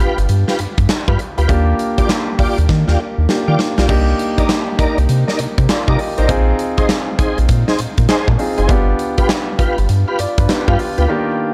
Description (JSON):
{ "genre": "R&B, new jack swing", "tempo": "100 BPM", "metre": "4/4", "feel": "swing 63% on 16ths", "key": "C minor", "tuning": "A4 = 439 Hz", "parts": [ { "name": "clear concert grand piano", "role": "accompaniment", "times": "0.0-11.5 s", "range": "Eb3 to Eb5", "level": "-23 LUFS", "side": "equal", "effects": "none" }, { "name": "tonewheel organ", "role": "stabs", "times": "0.0-11.1 s", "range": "Eb4 to D5", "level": "-24 LUFS", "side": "equal", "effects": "chorus vibrato, slow rotary speaker, digital delay" }, { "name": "round analog bass", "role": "bass", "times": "0.0-11.1 s", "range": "F#1 to Eb3", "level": "-17 LUFS", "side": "equal", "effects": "none" }, { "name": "big rock drum kit", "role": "drums", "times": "0.2-11.1 s", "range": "crash cymbal, handclaps, hi-hat, kick drum, snare drum", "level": "-20 LUFS", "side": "equal", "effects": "none" } ], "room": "small room ambience", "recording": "none", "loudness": "-16 LUFS", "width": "mono", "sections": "0.0-3.9 A section; 3.9-11.5 B section", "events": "drum fill 2.7-3.9; break 11.1-11.5", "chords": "0.0 G7; 1.5 Ebmaj9; 3.9 Cm9; 6.3 Bb9sus4; 8.7 G7" }